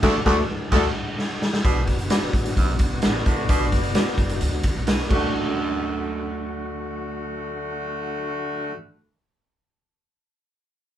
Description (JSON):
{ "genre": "uptempo 1960s-style soul", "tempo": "130 BPM", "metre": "4/4", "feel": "straight", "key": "D major", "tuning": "A4 = 440 Hz", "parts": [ { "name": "mellow horn section", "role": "second line", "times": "0.0-8.7 s", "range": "D3 to A4", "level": "-29 LUFS", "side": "left 1 dB", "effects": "none" }, { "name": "reed electric piano", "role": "accompaniment", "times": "0.0-8.8 s", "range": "D2 to D5", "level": "-28 LUFS", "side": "left 3 dB", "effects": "fast tremolo" }, { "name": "tonewheel organ", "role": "sustained chords", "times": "0.0-8.7 s", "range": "D3 to A4", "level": "-35 LUFS", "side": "equal", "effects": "slow rotary speaker" }, { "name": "edgy baritone saxophone", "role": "riff", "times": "0.0-6.7 s", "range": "D2 to B2", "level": "-29 LUFS", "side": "right 3 dB", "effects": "none" }, { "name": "electric guitar through a small old amp", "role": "stabs", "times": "0.0-8.8 s", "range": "A3 to D5", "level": "-30 LUFS", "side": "right 5 dB", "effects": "none" }, { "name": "upright bass", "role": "bass", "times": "0.0-8.7 s", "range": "F#1 to D2", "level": "-29 LUFS", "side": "equal", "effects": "none" }, { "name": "raw garage drum kit", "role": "drums", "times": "0.0-5.2 s", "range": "crash cymbal, hi-hat, kick drum, snare drum", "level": "-22 LUFS", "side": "equal", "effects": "none" } ], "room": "moderate small room reverb, RT60 0.5 s", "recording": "band playing live in one room", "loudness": "-21 LUFS", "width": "side -11 dB against mid", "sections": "0.0-1.6 A section; 1.6-5.3 B section; 5.3-9.0 C section", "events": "band accent 0.0-1.6; drum fill 1.2-1.6", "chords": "0.0 D; 1.6 Bm; 5.1 D", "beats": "0.26 0.72 1.18 | 1.64 2.10 2.57 3.03 | 3.49 3.95 4.41 4.88 | 5.34 5.80 6.26 6.72 | 7.19 7.65 8.11 8.57" }